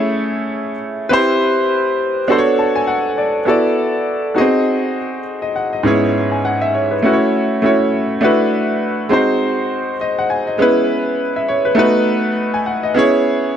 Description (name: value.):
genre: soul.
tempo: 101 BPM.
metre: 4/4.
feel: swing 58% on 16ths.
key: unclear.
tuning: A4 = 438 Hz.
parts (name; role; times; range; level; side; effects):
clear concert grand piano; solo; 0.0-13.6 s; G#2 to A5; -14 LUFS; equal; none.
room: light reverb.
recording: none.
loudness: -14 LUFS.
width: side -9 dB against mid.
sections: 0.0-3.5 A section; 3.5-13.0 B section.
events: grand piano fill 2.3-3.5.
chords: 0.0 Amaj7; 1.1 Cmaj7; 2.3 Bm9; 3.5 D69; 4.4 G#7; 5.8 C#m7/G#; 7.0 F#m7; 8.2 D69; 9.1 G#7; 10.6 C#m7/G#; 11.8 B7; 13.0 E6.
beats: 0.51 | 1.10 1.70 2.29 2.88 | 3.48 4.07 4.66 5.26 | 5.85 6.44 7.04 7.63 | 8.22 8.81 9.41 10.00 | 10.59 11.19 11.78 12.37 | 12.96 13.55.